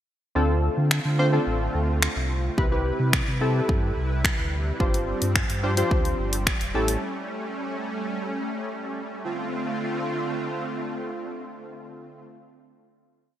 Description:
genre	dance-pop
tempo	108 BPM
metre	4/4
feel	straight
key	D minor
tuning	A4 = 436 Hz
part	warm analog keys	accompaniment	0.4-7.0 s	C4 to C5	-27 LUFS	left 1 dB	chorus, sidechain pumping
part	soft supersaw	sustained chords	0.4-12.2 s	C3 to B4	-30 LUFS	right 1 dB	ensemble chorus, sidechain pumping
part	sub bass with octave	bass	0.4-7.0 s	F1 to D3	-25 LUFS	equal	sidechain pumping
part	pop drum kit	drums	0.9-7.0 s	finger snaps, hi-hat, kick drum	-25 LUFS	equal	gated reverb
room	light reverb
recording	bright 1980s-style digital production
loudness	-23 LUFS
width	side -11 dB against mid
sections	0.4-9.2 verse; 9.2-11.5 final chord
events	none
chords	0.4 Dm7; 2.6 Cmaj7; 4.8 G7sus4; 6.7 A7; 9.2 Dm7

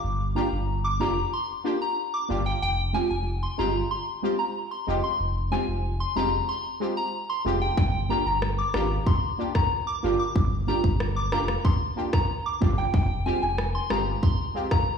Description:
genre	dancehall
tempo	93 BPM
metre	4/4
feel	straight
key	G phrygian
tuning	A4 = 440 Hz
part	saturated sub bass	bass	0.0-14.2 s	F1 to Ab1	-28 LUFS	equal	none
part	soft synth bell	melody	0.4-14.8 s	G5 to D6	-28 LUFS	left 2 dB	chorus, phaser, digital delay
part	synth brass stab	accompaniment	0.4-14.7 s	Ab3 to G4	-30 LUFS	right 1 dB	chorus, phaser
part	pop drum kit	drums	7.8-14.9 s	kick drum, rim click	-24 LUFS	equal	none
room	light reverb, digital ambience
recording	played on a big sound system in a bare room, stone room reverb, small room reverb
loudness	-23 LUFS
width	side -6 dB against mid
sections	0.0-15.0 A section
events	none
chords	0.0 Gm7; 2.6 Fmadd9; 7.8 Gm7; 12.9 Fmadd9

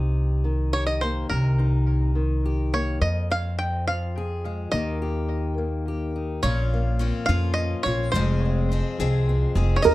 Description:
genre	indie folk with a building arrangement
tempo	70 BPM (dotted quarters)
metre	6/8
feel	straight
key	F minor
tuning	A4 = 440 Hz
part	fingerpicked acoustic archtop guitar	accompaniment	0.0-9.9 s	F2 to Ab4	-29 LUFS	left 3 dB	none
part	upright bass	bass	0.0-9.9 s	F1 to F2	-23 LUFS	equal	none
part	bluegrass banjo	melody	0.7-9.9 s	Bb4 to G5	-28 LUFS	right 1 dB	analog delay
part	picked steel-string acoustic guitar	accompaniment	6.4-9.9 s	F2 to Ab4	-30 LUFS	left 6 dB	none
part	dark upright piano	arpeggios	9.8-9.9 s	Bb4	-15 LUFS	right 6 dB	none
room	small room ambience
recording	dark, warm production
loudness	-22 LUFS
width	side -16 dB against mid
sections	0.0-6.4 A section; 6.4-9.9 B section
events	none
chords	0.0 Cm7; 3.0 Fm; 4.7 Eb; 6.4 Bbmadd9; 8.1 Fm

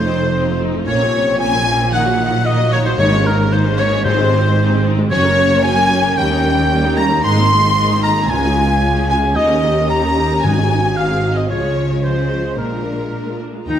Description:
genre	cinematic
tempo	113 BPM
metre	4/4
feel	straight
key	unclear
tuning	A4 = 440 Hz
part	warm symphonic violin section	melody	0.0-13.8 s	Bb4 to C6	-24 LUFS	left 3 dB	none
part	mellow hollow concert flute	second line	0.0-13.4 s	Bb4 to C6	-22 LUFS	left 1 dB	none
part	warm oboe	second line	0.0-13.4 s	Bb4 to C6	-21 LUFS	equal	none
part	warm symphonic violin section	second line	0.0-13.8 s	Bb4 to C6	-25 LUFS	left 1 dB	none
part	warm symphonic viola section	accompaniment	0.0-13.8 s	Eb3 to Bb4	-23 LUFS	right 1 dB	none
part	mellow French horn section	sustained chords	0.0-13.8 s	C3 to G4	-23 LUFS	left 3 dB	none
part	warm studio cello section	bass	0.0-13.8 s	Db2 to Db3	-20 LUFS	right 2 dB	none
part	warm symphonic double bass section	bass	0.0-13.7 s	F1 to Eb2	-22 LUFS	right 2 dB	none
part	timpani	percussion	3.0-4.8, 8.3-10.9 s	Ab2 to Db3	-23 LUFS	left 2 dB	none
part	clear clarinet	second line	13.7-13.8 s	Eb4	-17 LUFS	left 4 dB	none
room	moderate scoring stage reverb, RT60 1.8 s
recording	none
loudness	-13 LUFS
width	side -9 dB against mid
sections	0.0-13.7 A section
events	none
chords	0.0 F7; 0.9 Bbmadd9; 1.9 Ebm/Bb; 3.0 Absus4; 4.1 Ab; 5.1 Gb; 6.2 Eb7; 7.2 Abadd9; 8.3 Db; 9.4 Eb7; 10.4 Ab7sus4; 11.0 Ab7; 11.5 Db; 12.6 Bb7

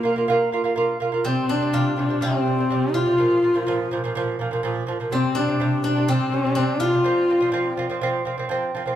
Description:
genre	mongolian traditional, Mongolian folk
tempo	124 BPM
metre	4/4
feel	straight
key	unclear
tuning	A4 = 439 Hz
part	dark horsehead fiddle	melody	0.0-7.8 s	Bb3 to F4	-22 LUFS	left 1 dB	none
part	lute	arpeggios	0.0-9.0 s	Bb2 to F4	-23 LUFS	right 2 dB	none
part	steel-string zither	second line	1.2-9.0 s	C4 to F4	-29 LUFS	left 4 dB	none
room	wet large studio reverb, RT60 1.1 s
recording	band playing live in one room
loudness	-19 LUFS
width	side -11 dB against mid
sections	0.0-1.3 A section; 1.3-9.0 B section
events	none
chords	0.0 Bb5; 1.3 C5; 3.2 Bb5; 5.1 C5; 7.1 F5

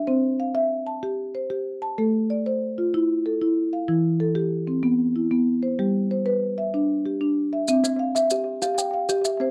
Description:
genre	southern african traditional, mbira-style interlocking cycle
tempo	126 BPM (dotted quarters)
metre	12/8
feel	straight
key	C major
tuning	A4 = 440 Hz
part	marimba with soft mallets	arpeggios	0.0-9.5 s	E3 to A5	-24 LUFS	equal	none
part	maracas	percussion	7.7-9.4 s	none	-30 LUFS	equal	none
part	kalimba	arpeggios	7.8-9.5 s	C4 to G5	-28 LUFS	equal	slapback echo
room	light reverb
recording	dry, close 1970s-style studio recording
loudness	-24 LUFS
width	mono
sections	0.0-7.7 A section; 7.7-9.5 B section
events	none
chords	0.1 C; 2.0 Am; 3.9 Em; 5.8 G; 7.7 C

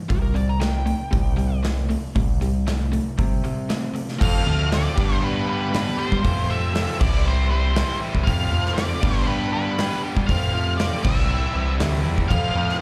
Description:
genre	classic rock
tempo	118 BPM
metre	4/4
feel	straight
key	unclear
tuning	A4 = 441 Hz
part	overdriven electric guitar	riff	0.0-12.8 s	F2 to A4	-29 LUFS	equal	spring reverb, slapback echo
part	overdriven slide guitar	second line	0.1-1.6 s	G4 to Bb5	-35 LUFS	equal	slapback echo
part	growling picked electric bass	bass	0.1-12.8 s	C2 to G3	-25 LUFS	equal	overdrive
part	big rock drum kit	drums	0.1-12.8 s	crash cymbal, hi-hat, kick drum, snare drum	-27 LUFS	equal	none
part	octave-fuzz lead guitar	melody	4.2-12.8 s	B4 to F5	-30 LUFS	equal	distortion, slapback echo
room	little or no reverb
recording	live gig heard through the venue's PA, club reverb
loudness	-22 LUFS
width	mono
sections	0.0-4.2 A section; 4.2-12.8 B section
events	none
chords	0.1 C5; 4.2 F; 5.0 G; 6.2 F; 7.0 C; 8.3 F; 9.0 G; 10.3 F; 11.0 C; 12.3 F

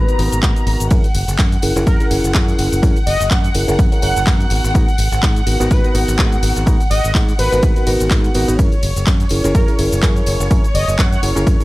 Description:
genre	filtered disco house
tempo	125 BPM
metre	4/4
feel	swing 56% on 16ths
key	unclear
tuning	A4 = 444 Hz
part	analog synth brass	melody	0.0-11.2 s	A#4 to F#5	-21 LUFS	equal	chorus, vintage 12-bit sampler grit, sidechain pumping
part	reed electric piano	accompaniment	0.0-11.6 s	B3 to B4	-20 LUFS	equal	phaser, sidechain pumping
part	dark studio violin section	sustained chords	0.0-11.6 s	C#5 to A#5	-25 LUFS	equal	sidechain pumping
part	modern bright fingered electric bass	bass	0.0-11.6 s	F#1 to G#2	-19 LUFS	equal	tube saturation, sidechain pumping
part	house drum kit	drums	0.1-11.6 s	handclaps, hi-hat, ride cymbal, shaker	-24 LUFS	equal	sidechain pumping on hats, studio reverb, sidechain pumping on perc, sidechain pumping on cymbals
part	electronic kick drum	drums	0.4-11.6 s	none	-15 LUFS	equal	studio reverb
part	tambourine	percussion	0.9-11.6 s	none	-33 LUFS	left 4 dB	none
room	little or no reverb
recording	dry, gritty hardware recording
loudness	-13 LUFS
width	side -19 dB against mid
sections	0.0-11.6 A section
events	none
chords	0.0 G#m9; 0.9 F#7; 4.5 G#m9; 8.6 F#7

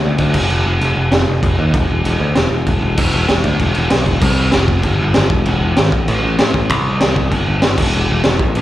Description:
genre	punk rock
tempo	194 BPM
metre	4/4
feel	straight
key	unclear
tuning	A4 = 440 Hz
part	modern bright picked electric bass	bass	0.1-8.6 s	E1 to D#2	-16 LUFS	equal	none
part	raw garage drum kit	drums	0.2-8.6 s	crash cymbal, kick drum, snare drum	-15 LUFS	equal	none
room	little or no reverb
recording	live gig heard through the venue's PA, club reverb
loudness	-12 LUFS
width	side -14 dB against mid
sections	0.0-3.0 A section; 3.0-4.2 B section; 4.2-8.6 C section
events	half time 0.0-3.0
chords	none

